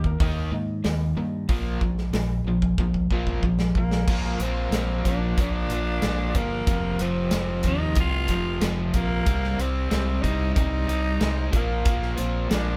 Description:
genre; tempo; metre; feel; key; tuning
classic rock; 93 BPM; 4/4; straight; unclear; A4 = 443 Hz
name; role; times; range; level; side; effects
electric slide guitar; second line; 0.0-0.5 s; Bb4 to Eb5; -41 LUFS; equal; none
crunchy overdriven guitar; riff; 0.0-12.8 s; F2 to Eb4; -34 LUFS; equal; none
overdriven electric guitar; riff; 0.0-12.8 s; F2 to Eb4; -32 LUFS; equal; tremolo
modern bright fingered electric bass; bass; 0.0-12.8 s; F1 to Ab2; -30 LUFS; equal; none
big rock drum kit; drums; 0.0-12.7 s; crash cymbal, hi-hat, kick drum, snare drum; -29 LUFS; equal; none
growling tenor saxophone; melody; 3.8-12.8 s; Bb3 to F4; -32 LUFS; equal; none
room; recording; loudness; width
moderate studio reverb, RT60 0.6 s; band playing live in one room; -24 LUFS; mono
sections
0.0-4.1 A section; 4.1-12.8 B section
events
drum fill 2.8-4.1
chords
0.0 Eb; 1.5 Bb5; 4.1 Bb; 6.7 F5; 9.3 Cm; 11.5 Bb5

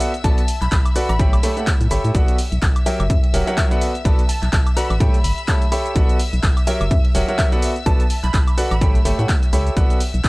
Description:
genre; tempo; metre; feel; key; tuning
piano house; 126 BPM; 4/4; swing 57% on 16ths; B minor; A4 = 441 Hz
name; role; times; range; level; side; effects
clear chamber violin section; sustained chords; 0.0-10.3 s; E5 to E6; -33 LUFS; left 3 dB; vintage 12-bit sampler grit, sidechain pumping
clear concert grand piano; riff; 0.0-10.0 s; F#3 to B5; -24 LUFS; right 1 dB; sidechain pumping, analog delay
punchy analog drum machine; drums; 0.0-10.3 s; handclaps, hi-hat, shaker, woodblock; -27 LUFS; equal; none
glassy wavetable pluck; melody; 0.2-8.9 s; E5 to B5; -28 LUFS; left 1 dB; chorus, analog delay
organ-like FM bass; bass; 0.2-10.3 s; E1 to A2; -20 LUFS; equal; sidechain pumping
electronic kick drum; drums; 0.2-10.3 s; none; -17 LUFS; equal; none
room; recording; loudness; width
digital ambience; dry, gritty hardware recording; -15 LUFS; side -23 dB against mid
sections
0.0-10.3 A section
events
none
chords
0.0 Bm7; 1.2 A7; 2.1 Bm7; 2.9 F#7b9; 3.8 Bm7; 5.0 A7; 6.0 Bm7; 6.7 F#7b9; 7.6 Bm7; 8.8 A7; 9.8 Bm7

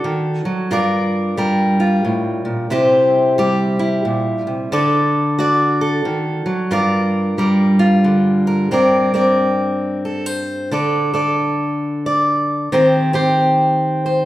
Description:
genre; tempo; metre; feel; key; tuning
folk, solo fingerstyle acoustic guitar; 90 BPM; 3/4; swing 62% on 8ths; G minor; A4 = 440 Hz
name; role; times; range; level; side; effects
fingerpicked steel-string acoustic guitar; solo; 0.0-14.3 s; G2 to D5; -14 LUFS; equal; none
room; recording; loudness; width
wet recital hall reverb, RT60 1.4 s; recorded in a church or concert hall; -14 LUFS; side -15 dB against mid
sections
0.0-8.7 A section; 8.7-14.3 B section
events
none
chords
0.0 D; 0.7 Gm7; 2.7 C; 4.7 D; 6.7 Gm7; 8.7 Gm; 10.7 D5; 12.7 Cm/Eb

